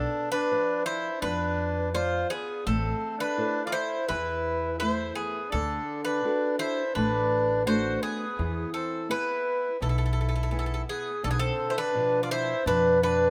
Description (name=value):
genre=greek folk, Greek bouzouki band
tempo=84 BPM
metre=4/4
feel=straight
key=unclear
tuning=A4 = 440 Hz
part: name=Greek bouzouki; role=melody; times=0.0-13.3 s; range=G#4 to D5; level=-30 LUFS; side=equal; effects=none
part: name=accordion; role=second line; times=0.0-13.3 s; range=B3 to F#4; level=-35 LUFS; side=equal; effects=none
part: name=nylon-string guitar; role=accompaniment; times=0.0-13.3 s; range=B2 to E5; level=-36 LUFS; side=equal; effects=none
part: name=upright bass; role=bass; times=0.0-13.3 s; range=A1 to F2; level=-33 LUFS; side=equal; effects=none
room=light reverb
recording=none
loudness=-28 LUFS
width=mono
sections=0.0-11.2 A section; 11.2-13.3 A section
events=none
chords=0.0 Bdim; 2.7 Am; 5.5 D; 8.4 E; 11.2 Bdim